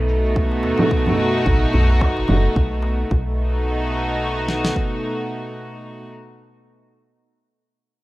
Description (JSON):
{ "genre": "organic downtempo", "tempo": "109 BPM", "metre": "4/4", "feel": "swing 58% on 16ths", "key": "unclear", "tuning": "A4 = 440 Hz", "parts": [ { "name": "dark studio string section", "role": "sustained chords", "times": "0.0-6.1 s", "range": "B2 to F#4", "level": "-21 LUFS", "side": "equal", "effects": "sidechain pumping" }, { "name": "guzheng", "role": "arpeggios", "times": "0.0-1.8 s", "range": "none", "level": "barely audible", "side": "none", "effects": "none" }, { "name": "woody FM bass", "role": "bass", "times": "0.0-4.7 s", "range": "F#1 to D#2", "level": "-20 LUFS", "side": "equal", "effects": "sidechain pumping" }, { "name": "electronic cabasa, congas and finger snaps", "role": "drums", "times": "0.1-3.1 s", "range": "none", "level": "-22 LUFS", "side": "right 1 dB", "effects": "low-pass filter on perc, low-pass filter on snare, low-pass filter on room" }, { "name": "deep house drum kit", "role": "drums", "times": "0.4-4.9 s", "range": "kick drum, snare drum", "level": "-22 LUFS", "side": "equal", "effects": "none" }, { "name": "darbuka", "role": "percussion", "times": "0.5-3.0 s", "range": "none", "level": "-30 LUFS", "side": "equal", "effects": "none" } ], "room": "light reverb", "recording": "rough home demo mix", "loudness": "-17 LUFS", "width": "side -18 dB against mid", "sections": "0.0-3.1 A section; 3.1-5.3 B section", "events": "filter sweep on drum 0.0-3.1", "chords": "0.0 B7" }